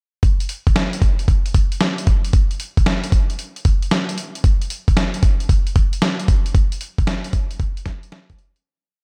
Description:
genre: R&B, new jack swing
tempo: 114 BPM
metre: 4/4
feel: swing 67% on 16ths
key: none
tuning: none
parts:
  - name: dusty soul sampler-style drum kit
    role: drums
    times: 0.2-8.6 s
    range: hi-hat, kick drum, snare drum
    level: -18 LUFS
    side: equal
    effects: none
room: light reverb, digital ambience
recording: none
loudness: -19 LUFS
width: mono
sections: 0.2-8.7 breakdown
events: fade-out 6.5-8.7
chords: none

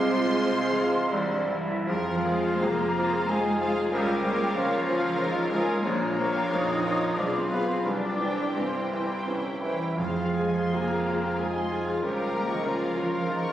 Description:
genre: classical, romantic movement for piano and orchestra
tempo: 77-98 BPM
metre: 3/4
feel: rubato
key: F minor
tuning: A4 = 441 Hz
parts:
  - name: clear grand piano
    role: melody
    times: 0.0-13.5 s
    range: Bb1 to C6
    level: -29 LUFS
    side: equal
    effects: none
  - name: rich studio violin section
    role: melody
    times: 0.0-13.5 s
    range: F4 to C6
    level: -39 LUFS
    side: left 1 dB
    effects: none
  - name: clear clarinet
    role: second line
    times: 0.0-13.5 s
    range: G4 to Db5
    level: -38 LUFS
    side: left 1 dB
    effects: none
  - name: flute section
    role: second line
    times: 0.0-13.3 s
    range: Eb5 to Eb6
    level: -36 LUFS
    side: left 1 dB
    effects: none
  - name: mellow oboe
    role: second line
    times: 0.0-13.5 s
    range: Eb4 to F5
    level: -34 LUFS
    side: equal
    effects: none
  - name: warm symphonic violin section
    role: second line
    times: 0.0-13.5 s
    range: B4 to Db6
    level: -36 LUFS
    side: left 1 dB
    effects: none
  - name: clear symphonic viola section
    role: accompaniment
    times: 0.0-13.5 s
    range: G3 to Bb4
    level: -35 LUFS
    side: equal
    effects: none
  - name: mellow bassoon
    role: accompaniment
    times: 0.0-13.5 s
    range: E3 to Ab3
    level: -34 LUFS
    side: right 1 dB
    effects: none
  - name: mellow French horn section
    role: sustained chords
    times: 0.0-13.5 s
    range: C4 to Db5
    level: -34 LUFS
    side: equal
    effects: none
  - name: rich symphonic double bass section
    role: bass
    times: 0.0-13.5 s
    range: Bb1 to F2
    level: -38 LUFS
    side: right 3 dB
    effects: none
  - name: warm symphonic cello section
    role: bass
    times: 0.0-13.5 s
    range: C3 to Eb4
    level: -33 LUFS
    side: right 1 dB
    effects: none
  - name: timpani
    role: percussion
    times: 0.0-0.7, 10.0-11.0 s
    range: F2 to C3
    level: -43 LUFS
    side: right 1 dB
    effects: none
room: wet scoring stage reverb, RT60 2.0 s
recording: recorded on a phone in the room, studio reverb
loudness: -24 LUFS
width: side -12 dB against mid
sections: 0.0-1.9 A section; 1.9-13.5 B section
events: none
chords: 0.0 Fm/C; 1.1 C; 1.9 Fm; 3.9 Bbm/Db; 5.8 Bbm; 7.2 Bdim7; 7.8 C; 10.0 Fm; 12.0 Bbm/Db

